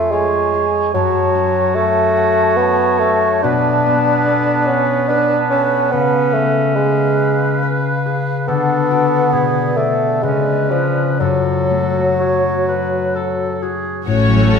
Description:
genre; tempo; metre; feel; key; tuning
classical, slow romantic movement for symphony orchestra; 60-74 BPM; 3/4; rubato; F# minor; A4 = 440 Hz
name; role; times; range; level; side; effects
bright clarinet; second line; 0.0-13.7 s; B3 to F#4; -24 LUFS; left 1 dB; none
warm bassoon; accompaniment; 0.0-13.6 s; E#3 to D4; -17 LUFS; right 2 dB; none
concert harp; arpeggios; 0.0-14.6 s; E#2 to G#5; -20 LUFS; left 7 dB; none
mellow hollow flute section; second line; 0.1-13.7 s; C#5 to A5; -23 LUFS; left 1 dB; none
mellow oboe; second line; 0.1-14.1 s; G#4 to C#5; -23 LUFS; right 3 dB; none
warm studio violin section; melody; 14.1-14.6 s; C#5; -22 LUFS; left 4 dB; none
warm studio violin section; second line; 14.1-14.6 s; F#4 to C#5; -21 LUFS; left 3 dB; none
warm studio viola section; accompaniment; 14.1-14.6 s; A3 to C#4; -18 LUFS; right 4 dB; none
rich studio cello section; bass; 14.1-14.6 s; A2; -19 LUFS; equal; none
warm studio double bass section; bass; 14.1-14.6 s; A1; -17 LUFS; right 1 dB; none
room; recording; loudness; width
wet scoring stage reverb, RT60 1.9 s; none; -13 LUFS; side -6 dB against mid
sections
0.0-14.1 A section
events
none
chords
0.0 C#/E#; 0.9 F#m; 3.4 Bm7; 5.9 C#7; 8.5 D; 9.3 G#dim/B; 10.2 C#7b9; 11.2 F#m; 14.1 F#m/A

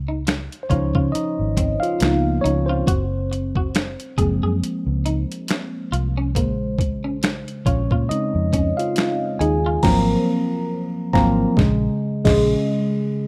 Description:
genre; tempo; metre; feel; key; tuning
R&B, neo-soul; 69 BPM; 4/4; swing 57% on 16ths; Bb minor; A4 = 440 Hz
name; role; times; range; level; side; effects
vintage muted fingered electric bass; bass; 0.0-12.5 s; Gb1 to Db3; -25 LUFS; equal; none
clean electric guitar; second line; 0.1-9.8 s; Bb3 to Ab4; -30 LUFS; equal; none
boom bap sampler-style drum kit; drums; 0.3-12.5 s; crash cymbal, finger snaps, hi-hat, kick drum, snare drum; -24 LUFS; equal; none
tine electric piano; accompaniment; 0.6-13.3 s; Db3 to Bb5; -24 LUFS; equal; phaser
room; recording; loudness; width
digital ambience; rough home demo mix; -21 LUFS; mono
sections
0.0-13.3 A section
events
tine electric piano solo 0.0-13.3; band accent 9.8-13.3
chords
0.0 Dbmaj9; 2.0 Db13; 2.9 Gbmaj9#11; 6.3 Bbm9; 9.8 Ab13; 11.6 Bbm7

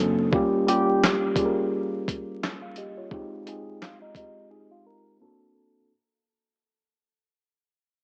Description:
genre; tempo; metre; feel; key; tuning
lo-fi hip hop; 86 BPM; 4/4; swing 57% on 16ths; unclear; A4 = 440 Hz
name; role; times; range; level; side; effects
tine electric piano; accompaniment; 0.0-5.9 s; F#3 to G5; -28 LUFS; equal; low-pass filter
dusty soul sampler-style drum kit; drums; 0.3-4.3 s; handclaps, hi-hat, kick drum, snare drum; -30 LUFS; equal; cassette tape
semi-hollow electric guitar; melody; 0.7-5.5 s; Eb4 to Bb4; -34 LUFS; equal; low-pass filter, cassette tape, tape echo
room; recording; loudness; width
light reverb; home recording on cassette, vinyl crackle, small speaker sound; -24 LUFS; mono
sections
0.0-5.9 A section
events
fade-out 0.0-5.9; filter sweep 0.0-5.9; break 4.5-5.9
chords
0.3 Gm7b5; 3.1 Fm7; 5.2 D7b13

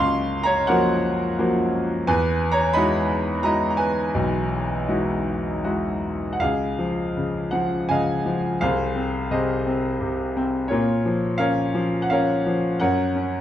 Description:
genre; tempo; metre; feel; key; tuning
classical, lyrical solo piano; 78-90 BPM; 3/4; rubato; Db major; A4 = 440 Hz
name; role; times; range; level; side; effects
bright grand piano; solo; 0.0-13.4 s; B1 to Db6; -20 LUFS; equal; none
room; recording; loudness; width
moderate recital hall reverb, RT60 1.6 s; dark, warm production; -20 LUFS; side -11 dB against mid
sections
0.0-6.4 A section; 6.4-13.4 B section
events
none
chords
0.0 Gbmaj7; 2.1 Emaj9; 6.4 Dbadd9; 8.6 Ab/C; 10.7 Bbm; 12.8 Gb

